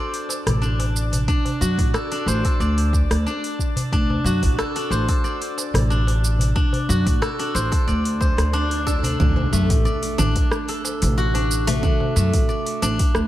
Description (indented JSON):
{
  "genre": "organic downtempo",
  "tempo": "91 BPM",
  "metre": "4/4",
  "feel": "straight",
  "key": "unclear",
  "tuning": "A4 = 441 Hz",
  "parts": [
    { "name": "steel-string zither", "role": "arpeggios", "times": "0.0-13.3 s", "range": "A3 to D5", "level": "-25 LUFS", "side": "left 1 dB", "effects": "digital delay" },
    { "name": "drifting glass-harmonics texture", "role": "texture", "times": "0.1-9.2 s", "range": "D4 to D5", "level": "-34 LUFS", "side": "left 2 dB", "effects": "chorus, built-in reverb" },
    { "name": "deep house drum kit", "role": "drums", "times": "0.1-13.3 s", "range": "congas, hi-hat, rim click, shaker", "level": "-28 LUFS", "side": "right 1 dB", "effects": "overdrive, small room ambience" },
    { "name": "darbuka", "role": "percussion", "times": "0.3-13.1 s", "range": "none", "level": "-29 LUFS", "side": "equal", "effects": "none" },
    { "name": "upright bass", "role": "bass", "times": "0.5-13.3 s", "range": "A1 to F#2", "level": "-21 LUFS", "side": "equal", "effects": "none" },
    { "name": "electronic kick drum", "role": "drums", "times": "1.3-13.1 s", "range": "none", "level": "-21 LUFS", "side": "equal", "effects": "small room ambience" },
    { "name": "swell and impact", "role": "sound effects", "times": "8.2-11.8 s", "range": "none", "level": "-30 LUFS", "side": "right 1 dB", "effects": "none" }
  ],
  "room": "light reverb",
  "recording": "none",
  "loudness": "-18 LUFS",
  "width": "side -14 dB against mid",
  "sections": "0.0-9.2 A section; 9.2-13.3 B section",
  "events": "swell 8.2-9.2; impact 9.2-11.8",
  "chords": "0.0 D7"
}